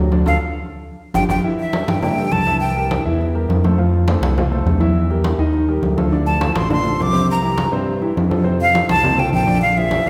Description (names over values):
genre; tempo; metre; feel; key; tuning
Afro-Cuban jazz; 205 BPM; 4/4; straight; C major; A4 = 440 Hz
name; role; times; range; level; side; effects
warm baby grand piano; accompaniment; 0.0-10.1 s; C3 to F5; -25 LUFS; equal; none
smooth synth bass; bass; 0.0-10.1 s; G1 to G2; -22 LUFS; equal; none
congas; percussion; 0.1-10.1 s; none; -23 LUFS; equal; none
breathy bright jazz flute; melody; 0.3-3.0, 6.3-10.1 s; E5 to D6; -21 LUFS; equal; none
room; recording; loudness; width
wet scoring stage reverb, RT60 1.6 s; recorded in a church or concert hall; -17 LUFS; mono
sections
0.0-1.4 A section; 1.4-10.1 B section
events
band accent 0.3-1.4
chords
0.3 Dm; 0.9 G5; 1.4 C6; 2.6 C7; 3.8 Fmaj7; 5.0 Edim; 5.5 Ebadd9; 6.1 Dm7; 7.3 C7; 8.5 F69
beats
| 0.27 0.56 0.85 1.15 | 1.44 1.74 2.03 2.32 | 2.61 2.91 3.20 3.49 | 3.79 4.08 4.37 4.66 | 4.96 5.25 5.54 5.83 | 6.12 6.42 6.71 7.00 | 7.29 7.58 7.88 8.17 | 8.46 8.75 9.04 9.33 | 9.62 9.92